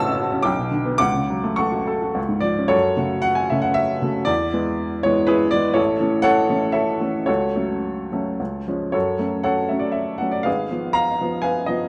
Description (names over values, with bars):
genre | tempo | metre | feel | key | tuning
classical, romantic character piece for solo piano | 102-130 BPM | 3/4 | rubato | F# minor | A4 = 442 Hz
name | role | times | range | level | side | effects
bright upright piano | solo | 0.0-11.9 s | Ab1 to E6 | -21 LUFS | equal | none
room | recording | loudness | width
moderate recital hall reverb, RT60 1.9 s | close, detailed microphones | -21 LUFS | mono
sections
0.0-2.7 A section; 2.7-11.9 B section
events
none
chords
0.5 G/B; 1.0 F#m/C#; 2.2 C#; 2.7 F#m; 4.3 E; 5.8 A; 7.3 F#m/C#; 8.4 C#; 8.9 F#m; 10.5 Fdim/Ab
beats
0.46 | 1.01 1.60 2.17 | 2.73 3.26 3.78 | 4.29 4.80 5.30 | 5.78 6.26 6.75 | 7.28 7.83 8.39 | 8.95 9.46 9.96 | 10.46 10.96 11.45